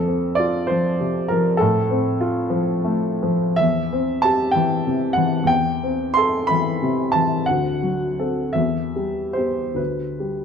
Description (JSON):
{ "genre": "classical, romantic nocturne for solo piano", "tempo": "46-68 BPM (dotted quarters)", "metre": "6/8", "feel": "rubato", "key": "unclear", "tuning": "A4 = 439 Hz", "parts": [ { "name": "warm upright piano", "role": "solo", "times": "0.0-10.4 s", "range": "D2 to C6", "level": "-18 LUFS", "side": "equal", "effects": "none" } ], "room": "moderate recital hall reverb, RT60 1.7 s", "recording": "close, detailed microphones", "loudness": "-18 LUFS", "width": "side -7 dB against mid", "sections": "0.0-10.4 A section", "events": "none", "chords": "0.0 F; 1.6 F/A; 3.6 C/E; 5.5 Am7/E; 7.5 D7; 8.6 Em; 9.8 G/D" }